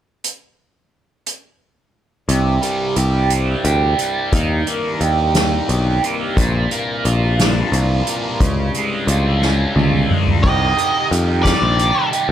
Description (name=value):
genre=psychedelic rock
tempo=59 BPM (dotted quarters)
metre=6/8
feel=straight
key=C minor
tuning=A4 = 440 Hz
part: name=soft-mallet drum kit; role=drums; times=0.2-12.3 s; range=crash cymbal, hi-hat, kick drum, snare drum, toms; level=-20 LUFS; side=equal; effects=none
part: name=overdriven electric guitar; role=riff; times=2.3-12.3 s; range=Bb2 to G4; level=-19 LUFS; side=right 2 dB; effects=phaser
part: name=picked electric bass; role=bass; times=2.3-12.3 s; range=Bb1 to F2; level=-17 LUFS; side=equal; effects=none
part: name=pedal harmonium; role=drone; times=2.3-10.5 s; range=C2 to G2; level=-28 LUFS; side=left 2 dB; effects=none
part: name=octave-fuzz lead guitar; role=melody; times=10.4-12.1 s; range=D5 to Eb5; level=-19 LUFS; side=left 1 dB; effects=distortion, tape echo
room=studio reverb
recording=none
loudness=-15 LUFS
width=side -10 dB against mid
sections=0.2-2.3 A section; 2.3-10.4 B section; 10.4-12.3 C section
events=drum fill 9.4-10.4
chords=0.2 N.C.; 2.3 C5; 4.3 Eb; 6.4 Bb; 8.4 Db; 10.4 Cm